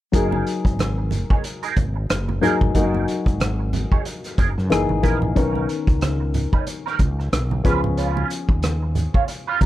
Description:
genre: lush 1970s-style soul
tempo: 92 BPM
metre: 4/4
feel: swing 58% on 16ths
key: F# major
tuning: A4 = 440 Hz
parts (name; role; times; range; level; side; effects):
- dark grand piano; accompaniment; 0.1-9.7 s; D#3 to A#5; -24 LUFS; left 4 dB; none
- semi-hollow electric guitar; riff; 0.1-9.7 s; C#4 to D#5; -26 LUFS; right 8 dB; wah, ensemble chorus
- fretless electric bass; bass; 0.1-9.7 s; E#1 to F#2; -23 LUFS; equal; none
- vintage drum kit; drums; 0.1-9.7 s; hi-hat, kick drum, rim click; -22 LUFS; equal; none
- congas; percussion; 0.1-9.7 s; none; -28 LUFS; right 4 dB; none
room: small room ambience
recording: none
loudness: -18 LUFS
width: side -14 dB against mid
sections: 0.1-9.7 A section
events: grand piano fill 9.3-9.7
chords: 0.1 F#69; 4.7 F#13; 5.4 Bmaj9; 7.6 C#7

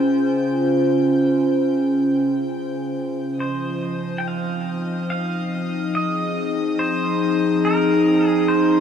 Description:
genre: ambient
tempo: 71 BPM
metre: 4/4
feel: straight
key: F minor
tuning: A4 = 440 Hz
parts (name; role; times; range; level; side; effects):
- warbly tape-like pad; sustained chords; 0.0-8.8 s; Db3 to C5; -18 LUFS; equal; chorus, built-in reverb
- warm studio violin section; texture; 0.0-8.8 s; Eb5 to G6; -36 LUFS; left 2 dB; none
- pedal steel guitar; melody; 3.4-8.8 s; Bb4 to G5; -26 LUFS; right 1 dB; tape echo
room: wet huge ambient reverb, RT60 7.8 s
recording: none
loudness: -18 LUFS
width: side -8 dB against mid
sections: 0.0-3.4 A section; 3.4-8.8 B section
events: fade-in on violin section 3.4-8.8; fade-in on pedal steel guitar 3.4-8.8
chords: 0.0 Dbmaj7; 3.4 Fm7

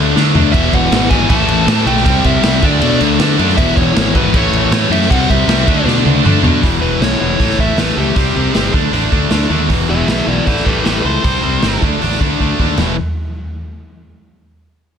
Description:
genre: hard rock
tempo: 156 BPM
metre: 4/4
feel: straight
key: unclear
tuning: A4 = 439 Hz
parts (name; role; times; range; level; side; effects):
- cranked stack guitar; riff; 0.0-12.9 s; E2 to D4; -18 LUFS; left 15 dB; overdrive
- distorted electric guitar; riff; 0.0-12.9 s; E2 to D4; -18 LUFS; right 15 dB; overdrive
- growling fingered electric bass; bass; 0.0-13.0 s; E1 to D3; -18 LUFS; right 1 dB; overdrive
- raw garage drum kit; drums; 0.2-12.9 s; crash cymbal, hi-hat, kick drum, snare drum, toms; -16 LUFS; equal; none
- dark smooth lead guitar; melody; 0.5-11.8 s; G4 to A5; -20 LUFS; equal; overdrive
- heavy high-gain guitar; riff; 0.5-6.6 s; E2 to D4; -21 LUFS; equal; distortion
room: light reverb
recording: none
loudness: -11 LUFS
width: side -8 dB against mid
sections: 0.0-6.6 A section; 6.6-12.8 B section; 12.8-14.3 C section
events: drum fill 0.2-0.5, 5.9-6.6, 12.4-12.8; lead electric guitar solo 6.6-12.8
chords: 0.0 D5; 0.5 E; 1.3 A5; 2.1 C; 2.6 D; 3.6 E; 4.3 A; 5.1 C; 5.7 D5; 6.6 E5; 7.4 A; 8.2 C5; 8.7 D5; 9.7 E; 10.5 A; 11.2 C5; 11.8 D5; 12.8 E5

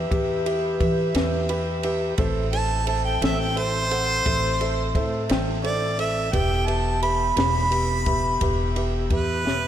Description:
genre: slow blues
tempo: 58 BPM (dotted quarters)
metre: 12/8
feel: straight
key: E minor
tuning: A4 = 440 Hz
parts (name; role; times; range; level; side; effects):
- warm grand piano; accompaniment; 0.0-9.7 s; G4 to B5; -29 LUFS; right 3 dB; slapback echo
- mellow tonewheel organ; sustained chords; 0.0-9.7 s; B3 to E5; -30 LUFS; left 2 dB; slow rotary speaker
- upright bass; bass; 0.0-9.7 s; E1 to E3; -26 LUFS; equal; none
- compact cocktail drum kit; drums; 0.1-9.6 s; kick drum, ride cymbal, snare drum; -28 LUFS; left 1 dB; none
- warm harmonica; second line; 2.5-9.7 s; B4 to B5; -24 LUFS; right 2 dB; slapback echo
room: moderate lush hall reverb, RT60 2.6 s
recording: big arena sound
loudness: -20 LUFS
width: side -10 dB against mid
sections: 0.0-9.7 A section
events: harmonica solo 0.0-9.7; grand piano fill 1.2-2.2; drum fill 9.4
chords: 0.0 Em; 2.2 Am; 6.3 Em

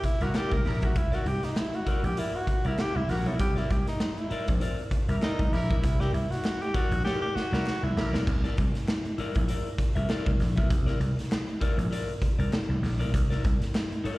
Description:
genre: funk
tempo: 99 BPM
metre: 4/4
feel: swing 56% on 16ths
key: C mixolydian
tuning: A4 = 440 Hz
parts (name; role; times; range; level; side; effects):
- breathy tenor saxophone; melody; 0.0-8.1 s; C4 to Bb4; -32 LUFS; equal; slapback echo
- clean electric guitar; accompaniment; 0.0-14.2 s; E4 to E5; -36 LUFS; left 4 dB; slapback echo
- vintage slap bass; bass; 0.0-14.1 s; Bb1 to C2; -28 LUFS; equal; none
- raw garage drum kit; drums; 0.0-14.2 s; crash cymbal, hi-hat, kick drum, snare drum; -28 LUFS; equal; none
- mellow horn section; second line; 0.2-8.2 s; E4 to Bb4; -40 LUFS; equal; slapback echo
- group handclap; percussion; 0.3-13.9 s; none; -48 LUFS; left 4 dB; none
room: light reverb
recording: live gig heard through the venue's PA, recital hall reverb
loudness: -25 LUFS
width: side -19 dB against mid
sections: 0.0-8.3 A section; 8.3-14.2 B section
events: tenor saxophone solo 0.0-8.3; drum fill 7.0-8.3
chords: 0.0 C9

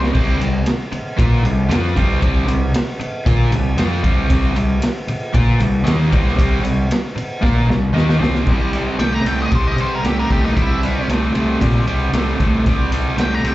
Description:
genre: blues rock power trio and southern rock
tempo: 115 BPM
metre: 4/4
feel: straight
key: unclear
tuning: A4 = 442 Hz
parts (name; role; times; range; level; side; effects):
- overdriven electric guitar; riff; 0.0-13.5 s; C3 to Bb4; -21 LUFS; equal; spring reverb, slapback echo
- fuzz fingered electric bass; bass; 0.0-13.5 s; C2 to C3; -19 LUFS; equal; overdrive
- raw garage drum kit; drums; 0.0-13.5 s; crash cymbal, kick drum, ride cymbal, snare drum; -19 LUFS; equal; none
- octave-fuzz lead guitar; melody; 9.0-13.5 s; Eb4 to Bb5; -25 LUFS; left 1 dB; distortion, slapback echo, digital delay
room: little or no reverb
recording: live gig heard through the venue's PA, club reverb, nothing above 7.7 kHz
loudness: -15 LUFS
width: side -16 dB against mid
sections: 0.1-8.5 A section; 8.5-13.5 B section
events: drum fill 7.4-8.5; lead electric guitar solo 8.5-13.5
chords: 0.1 C5

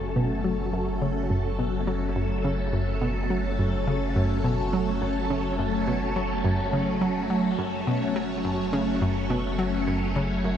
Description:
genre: ambient, sequencer-driven space music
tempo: 105 BPM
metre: 4/4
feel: straight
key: F# minor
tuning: A4 = 439 Hz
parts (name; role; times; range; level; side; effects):
- phased string machine; sustained chords; 0.0-10.6 s; F#3 to C#5; -27 LUFS; equal; ensemble chorus, phaser, shimmer reverb
- analog pluck; riff; 0.0-10.6 s; F#2 to F#3; -28 LUFS; equal; chorus, vintage 12-bit sampler grit, tape echo
- warm sub bass; bass; 0.0-10.6 s; F#1; -32 LUFS; equal; none
room: wet huge ambient reverb, RT60 7.2 s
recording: dark, warm production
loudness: -24 LUFS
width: side -9 dB against mid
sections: 0.0-10.6 A section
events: none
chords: 0.0 F#m

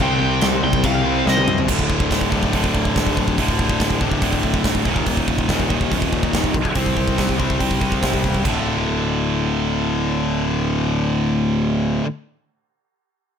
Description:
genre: heavy metal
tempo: 142 BPM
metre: 4/4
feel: straight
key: unclear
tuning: A4 = 440 Hz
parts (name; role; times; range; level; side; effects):
- high-gain lead guitar; melody; 0.0-1.6 s; Eb5 to G5; -23 LUFS; equal; distortion
- high-gain distorted guitar; riff; 0.0-12.1 s; D2 to C4; -22 LUFS; left 10 dB; distortion
- high-gain distorted guitar; riff; 0.0-12.1 s; D2 to C4; -24 LUFS; right 12 dB; distortion
- sludgy distorted guitar; riff; 0.0-1.7 s; C3 to C4; -26 LUFS; left 1 dB; none
- fuzz picked electric bass; bass; 0.0-12.0 s; D1 to C2; -23 LUFS; right 1 dB; overdrive
- big rock drum kit; drums; 0.0-8.6 s; china cymbal, crash cymbal, hi-hat, kick drum, snare drum, toms; -22 LUFS; right 1 dB; none
room: light reverb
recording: none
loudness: -17 LUFS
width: side -8 dB against mid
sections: 0.0-1.7 A section; 1.7-8.5 B section; 8.5-11.8 C section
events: drum fill 1.3-1.7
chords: 0.0 C5; 1.7 D5; 4.9 Eb5; 6.8 C5; 8.5 D5

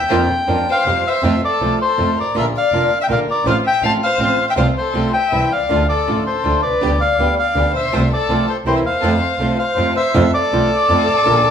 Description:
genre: tango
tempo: 162 BPM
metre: 3/4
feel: rubato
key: F major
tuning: A4 = 440 Hz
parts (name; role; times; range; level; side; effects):
- bandoneon; melody; 0.0-11.5 s; C5 to A5; -18 LUFS; left 1 dB; none
- dark violin; second line; 0.0-11.5 s; G4 to F5; -21 LUFS; left 4 dB; none
- clear double bass; bass; 0.0-11.4 s; F1 to F2; -21 LUFS; right 1 dB; none
- flamenco guitar; accompaniment; 0.1-11.3 s; C3 to G4; -21 LUFS; right 3 dB; none
- clear symphonic string section; stabs; 0.1-9.9 s; G3 to Bb4; -30 LUFS; equal; none
room: wet large studio reverb, RT60 0.8 s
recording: band playing live in one room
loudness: -14 LUFS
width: side -8 dB against mid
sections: 0.0-1.2 A section; 1.2-10.2 B section; 10.2-11.5 C section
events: none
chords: 0.1 Bb/F; 0.9 Fadd9; 1.2 F; 2.4 Bb; 3.5 F/A; 4.6 F/C; 5.3 C; 5.7 Dm; 6.8 G/D; 7.9 F/C; 8.7 C7; 9.0 F

